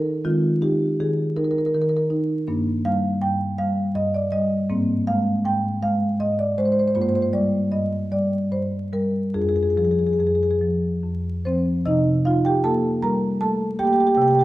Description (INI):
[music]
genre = classical, contemporary piece for solo marimba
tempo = 47-54 BPM (dotted quarters)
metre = 6/8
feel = rubato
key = C minor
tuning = A4 = 440 Hz
[part]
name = marimba with medium mallets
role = solo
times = 0.0-14.4 s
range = F2 to Bb5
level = -19 LUFS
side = equal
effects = none
[sound]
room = wet recital hall reverb, RT60 1.6 s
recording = dark, warm production, vinyl crackle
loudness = -19 LUFS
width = side -16 dB against mid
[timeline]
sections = 0.0-11.9 A section; 11.9-14.4 B section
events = none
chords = 0.2 Abadd9/Eb; 2.5 Gm; 4.7 Abadd9; 6.9 Gm7; 9.3 Fm6; 11.9 Cm7